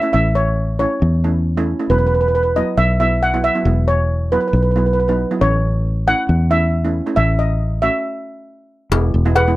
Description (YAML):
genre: calypso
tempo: 136 BPM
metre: 4/4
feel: straight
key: unclear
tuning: A4 = 441 Hz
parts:
  - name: steel pan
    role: melody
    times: 0.0-9.6 s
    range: B4 to F#5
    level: -18 LUFS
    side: right 1 dB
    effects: none
  - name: steel pan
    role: accompaniment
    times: 0.0-9.6 s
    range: F#3 to F#4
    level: -23 LUFS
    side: right 2 dB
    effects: none
  - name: fingered electric bass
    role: bass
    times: 0.1-9.6 s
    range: E1 to E2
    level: -16 LUFS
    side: equal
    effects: none
  - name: cowbell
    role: percussion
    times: 8.9-9.5 s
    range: none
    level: -23 LUFS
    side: left 7 dB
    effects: none
room: little or no reverb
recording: dry, close 1970s-style studio recording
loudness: -14 LUFS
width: side -17 dB against mid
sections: 0.0-8.9 A section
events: stop 8.0-8.9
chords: 0.0 A; 1.9 Esus2; 5.4 A; 8.9 E